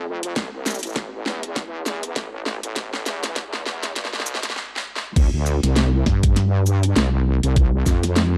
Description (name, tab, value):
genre	glitch hop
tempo	100 BPM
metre	4/4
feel	swing 57% on 16ths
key	D minor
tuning	A4 = 438 Hz
part	wobble bass	bass	0.0-8.4 s	A1 to G2	-24 LUFS	equal	chorus, high-pass filter
part	dubstep drum kit	drums	0.2-8.3 s	crash cymbal, hi-hat, shaker, snare drum	-27 LUFS	equal	none
part	electronic kick drum	drums	0.4-8.0 s	none	-21 LUFS	equal	none
room	digital ambience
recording	dry, gritty hardware recording, high-pass filter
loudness	-22 LUFS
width	mono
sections	0.0-5.2 A section; 5.2-8.4 B section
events	build-up 0.0-5.2; drum fill 0.0-4.6, 4.6-5.2; filter sweep 0.0-5.2; stop 4.6-5.2; drop 5.2-8.4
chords	none